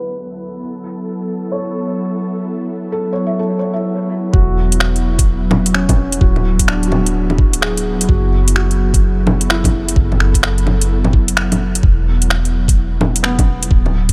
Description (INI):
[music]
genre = future garage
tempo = 128 BPM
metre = 4/4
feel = swing 63% on 16ths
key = F# minor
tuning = A4 = 440 Hz
[part]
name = felt-muted upright piano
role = accompaniment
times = 0.0-13.9 s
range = B3 to E5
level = -26 LUFS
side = equal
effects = sidechain pumping, analog delay
[part]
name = ethereal airy pad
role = sustained chords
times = 0.0-14.1 s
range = D2 to A4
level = -24 LUFS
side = equal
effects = ensemble chorus, built-in reverb, sidechain pumping
[part]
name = soft 808-style bass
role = bass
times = 4.3-14.1 s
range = D1 to F#1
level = -19 LUFS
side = equal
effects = sidechain pumping
[part]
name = electronic kick drum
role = drums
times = 4.3-14.1 s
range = none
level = -16 LUFS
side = equal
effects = none
[part]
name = garage drum kit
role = drums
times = 4.7-14.1 s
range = bongos, finger snaps, hi-hat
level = -20 LUFS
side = equal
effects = low-pass filter on hats, low-pass filter on perc, low-pass filter on snare
[sound]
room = light reverb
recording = low-pass filter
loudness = -15 LUFS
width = mono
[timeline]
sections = 0.0-4.3 A section; 4.3-14.1 B section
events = filter sweep 0.0-4.3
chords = 0.0 Dadd9; 0.6 F#m; 4.3 E6; 6.2 Dadd9; 8.1 F#m; 11.8 E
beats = 0.12 | 0.59 1.06 1.52 1.99 | 2.46 2.93 3.40 3.87 | 4.34 4.81 5.28 5.74 | 6.21 6.68 7.15 7.62 | 8.09 8.56 9.03 9.49 | 9.96 10.43 10.90 11.37 | 11.84 12.31 12.78 13.24 | 13.71